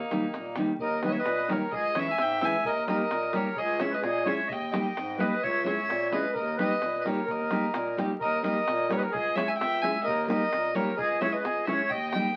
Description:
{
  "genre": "balkan folk, Balkan wedding band",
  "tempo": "130 BPM",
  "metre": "2/4",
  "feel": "straight",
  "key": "Eb phrygian dominant",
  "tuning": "A4 = 440 Hz",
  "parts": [
    { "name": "warm violin", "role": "melody", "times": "0.0-12.4 s", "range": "Eb4 to Ab5", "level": "-33 LUFS", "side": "equal", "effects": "none" },
    { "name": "accordion", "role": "second line", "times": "0.0-12.4 s", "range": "Bb3 to Fb5", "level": "-33 LUFS", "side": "equal", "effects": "light tremolo tuning" },
    { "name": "davul", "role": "percussion", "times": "0.0-12.3 s", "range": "none", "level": "-42 LUFS", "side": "equal", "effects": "none" },
    { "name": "nylon-string guitar", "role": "accompaniment", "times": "0.1-12.3 s", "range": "Eb3 to Ab4", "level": "-33 LUFS", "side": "equal", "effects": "none" },
    { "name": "mellow bass clarinet", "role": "bass", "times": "0.3-12.2 s", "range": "Db2 to Bb2", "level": "-38 LUFS", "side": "equal", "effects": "none" }
  ],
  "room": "moderate studio reverb, RT60 0.6 s",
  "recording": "very old 78 rpm record, vinyl crackle",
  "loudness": "-28 LUFS",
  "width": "mono",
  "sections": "0.8-8.2 A section; 8.2-12.4 A section",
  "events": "none",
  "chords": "0.0 Eb; 1.7 Dbm; 2.6 Eb; 3.6 Dbm; 4.5 Eb; 5.4 Dbm; 6.3 Eb; 9.1 Dbm; 10.1 Eb; 11.0 Dbm",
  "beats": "0.33 | 0.80 1.26 | 1.72 2.18 | 2.64 3.10 | 3.57 4.03 | 4.49 4.96 | 5.42 5.88 | 6.35 6.81 | 7.27 7.74 | 8.20 8.66 | 9.13 9.59 | 10.05 10.52 | 10.98 11.44 | 11.91"
}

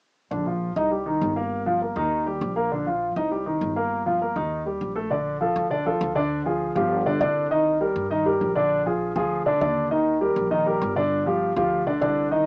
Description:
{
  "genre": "latin, salsa",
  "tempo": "200 BPM",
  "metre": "4/4",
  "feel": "straight",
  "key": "Bb major",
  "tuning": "A4 = 440 Hz",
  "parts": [
    { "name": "warm concert grand piano", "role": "accompaniment", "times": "0.3-12.5 s", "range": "D3 to Eb5", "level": "-21 LUFS", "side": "equal", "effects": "none" },
    { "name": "upright bass", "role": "bass", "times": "0.3-12.5 s", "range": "G1 to G2", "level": "-31 LUFS", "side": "equal", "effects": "none" }
  ],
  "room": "wet booth ambience, RT60 0.3 s",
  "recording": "home recording on cassette, small speaker sound",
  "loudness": "-21 LUFS",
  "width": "side -32 dB against mid",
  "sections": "0.3-5.1 A section; 5.1-12.5 B section",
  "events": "none",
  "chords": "0.3 Bbadd9; 0.9 Cm7; 1.5 Gm7; 2.1 Eb; 2.7 Bbadd9; 3.3 Cm7; 3.9 Gm7; 4.5 Eb; 5.1 Bbmaj7; 6.3 Ddim; 6.9 G5; 7.5 Cm7; 8.7 Bb7; 9.9 Ebmaj7; 11.1 G5",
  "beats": "| 0.31 0.61 0.91 1.21 | 1.51 1.81 2.11 2.41 | 2.71 3.01 3.31 3.61 | 3.91 4.21 4.51 4.81 | 5.11 5.41 5.71 6.01 | 6.31 6.61 6.91 7.21 | 7.51 7.81 8.11 8.41 | 8.71 9.01 9.31 9.61 | 9.91 10.21 10.51 10.81 | 11.11 11.41 11.71 12.02 | 12.32"
}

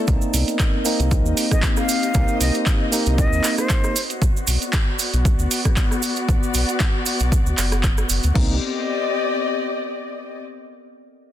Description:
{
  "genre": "deep house",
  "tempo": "116 BPM",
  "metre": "4/4",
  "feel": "swing 55% on 16ths",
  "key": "unclear",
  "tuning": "A4 = 440 Hz",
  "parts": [
    { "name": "warbly tape-like pad", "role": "sustained chords", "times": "0.0-8.6 s", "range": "B3 to Eb5", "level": "-31 LUFS", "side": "left 4 dB", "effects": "chorus, built-in reverb, sidechain pumping" },
    { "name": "tine electric piano", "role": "stabs", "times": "0.0-3.9, 8.3-8.6 s", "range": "Bb3 to Eb4", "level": "-25 LUFS", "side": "right 2 dB", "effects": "sidechain pumping, ping-pong delay" },
    { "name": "round analog bass", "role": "bass", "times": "0.1-8.6 s", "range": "F#1 to Eb2", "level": "-21 LUFS", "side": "equal", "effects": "sidechain pumping" },
    { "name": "electronic kick drum", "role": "drums", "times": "0.1-8.5 s", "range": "none", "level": "-19 LUFS", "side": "equal", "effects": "none" },
    { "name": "punchy analog drum machine", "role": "drums", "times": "0.1-8.5 s", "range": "crash cymbal, handclaps, hi-hat, rim click", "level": "-26 LUFS", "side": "right 2 dB", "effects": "none" },
    { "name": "cabasa", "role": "percussion", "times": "0.1-8.3 s", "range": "none", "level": "-28 LUFS", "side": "right 7 dB", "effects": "none" },
    { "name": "muted chamber string section", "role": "texture", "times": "0.1-10.4 s", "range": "B3 to Eb5", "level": "-27 LUFS", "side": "left 3 dB", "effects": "sidechain pumping" },
    { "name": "breathy concert flute", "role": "melody", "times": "1.5-4.0 s", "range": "C5 to F5", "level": "-28 LUFS", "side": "right 1 dB", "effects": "tape echo" }
  ],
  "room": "light reverb, digital ambience",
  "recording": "dense, heavily limited modern master",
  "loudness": "-18 LUFS",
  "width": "side -12 dB against mid",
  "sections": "0.1-8.4 A section; 8.4-10.4 B section",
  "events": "filter sweep on analog synth bass 0.1-8.4; filter sweep on ambient pad 0.1-8.4",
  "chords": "0.1 Cm7; 4.0 Bm7; 8.4 Cm7",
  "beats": "| 0.08 0.59 1.11 1.63 | 2.15 2.66 3.18 3.70 | 4.22 4.73 5.25 5.77 | 6.29 6.80 7.32 7.84 | 8.35 8.87 9.39 9.91"
}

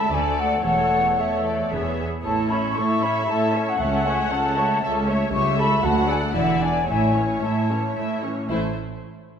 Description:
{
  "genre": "quick classical-period movement for symphony orchestra",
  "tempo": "114 BPM",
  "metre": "3/4",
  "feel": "uneven beats, rubato",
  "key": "A major",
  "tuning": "A4 = 439 Hz",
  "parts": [
    { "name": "muted studio violin section", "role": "melody", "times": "0.0-8.8 s", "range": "C5 to F#5", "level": "-33 LUFS", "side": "left 2 dB", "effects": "none" },
    { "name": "concert flute", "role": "second line", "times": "0.0-8.2 s", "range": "E5 to C#6", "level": "-24 LUFS", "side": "left 2 dB", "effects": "none" },
    { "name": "muted studio violin section", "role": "second line", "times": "0.0-8.8 s", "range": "E4 to F#5", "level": "-29 LUFS", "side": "left 3 dB", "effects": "none" },
    { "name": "muted studio viola section", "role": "accompaniment", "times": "0.0-8.7 s", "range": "D3 to C#5", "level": "-26 LUFS", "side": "right 1 dB", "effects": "none" },
    { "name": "muted studio cello section", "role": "bass", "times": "0.0-8.9 s", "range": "C#2 to A2", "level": "-26 LUFS", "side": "right 2 dB", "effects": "none" },
    { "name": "muted studio double bass section", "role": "bass", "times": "0.1-8.9 s", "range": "E1 to D2", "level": "-29 LUFS", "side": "right 3 dB", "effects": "none" }
  ],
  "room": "wet scoring stage reverb, RT60 1.9 s",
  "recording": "none",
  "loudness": "-19 LUFS",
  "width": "side -8 dB against mid",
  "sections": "0.0-8.5 A section",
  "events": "none",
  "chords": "0.1 D; 0.6 A/E; 1.7 E; 2.2 A; 3.8 A/C#; 5.3 A7/C#; 5.8 D; 6.4 E7; 6.9 A; 8.5 Am",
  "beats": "0.12 | 0.64 1.18 1.72 | 2.24 2.76 3.29 | 3.81 4.33 4.84 | 5.34 5.84 6.36 | 6.89 7.43 7.97 | 8.51"
}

